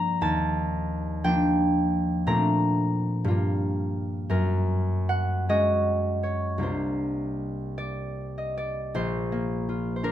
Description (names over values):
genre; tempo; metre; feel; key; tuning
classical, solo harp piece; 49-60 BPM (dotted quarters); 6/8; rubato; Bb major; A4 = 440 Hz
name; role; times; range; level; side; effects
concert harp; solo; 0.0-10.1 s; Bb1 to Bb5; -24 LUFS; equal; none
room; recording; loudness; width
moderate large studio reverb, RT60 1.3 s; minimal, uncompressed stereo recording; -24 LUFS; side -11 dB against mid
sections
0.0-9.0 A section; 9.0-10.1 B section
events
none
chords
0.2 Ebmaj9; 2.2 Bbmaj9; 3.3 Gm7; 4.3 Gbadd9; 6.6 C9sus4; 9.0 Bbadd9